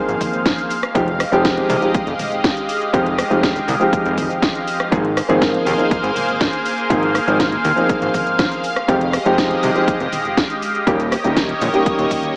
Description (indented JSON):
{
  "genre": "nu-disco, nu disco",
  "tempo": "121 BPM",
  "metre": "4/4",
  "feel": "straight",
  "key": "Ab major",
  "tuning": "A4 = 440 Hz",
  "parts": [
    { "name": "dark baby grand piano", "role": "accompaniment", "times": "0.0-12.4 s", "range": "Eb3 to Ab4", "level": "-22 LUFS", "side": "equal", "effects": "sidechain pumping, tape echo" },
    { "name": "lush unison pad", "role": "sustained chords", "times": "0.0-12.4 s", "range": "Ab3 to F5", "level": "-23 LUFS", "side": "equal", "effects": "chorus, phaser, sidechain pumping" },
    { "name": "fat analog bass", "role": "bass", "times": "0.1-12.3 s", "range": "Eb1 to Eb2", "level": "-25 LUFS", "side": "equal", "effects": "none" },
    { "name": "house drum kit", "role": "drums", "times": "0.1-12.3 s", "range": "hi-hat, rim click, shaker, snare drum", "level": "-26 LUFS", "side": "equal", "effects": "overdrive" },
    { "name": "electronic kick drum", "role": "drums", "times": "0.2-12.2 s", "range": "none", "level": "-25 LUFS", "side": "equal", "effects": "overdrive" },
    { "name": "congas", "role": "percussion", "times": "0.2-12.2 s", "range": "none", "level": "-35 LUFS", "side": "equal", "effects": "none" }
  ],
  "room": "moderate echo chamber reverb, RT60 1.6 s, digital ambience",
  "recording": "echo-heavy mix, AM radio sound",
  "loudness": "-18 LUFS",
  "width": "mono",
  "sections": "0.0-12.4 A section",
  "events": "none",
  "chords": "0.0 Ab69; 0.7 Fm9; 4.9 Ab69; 8.6 Fm9; 10.9 Eb7"
}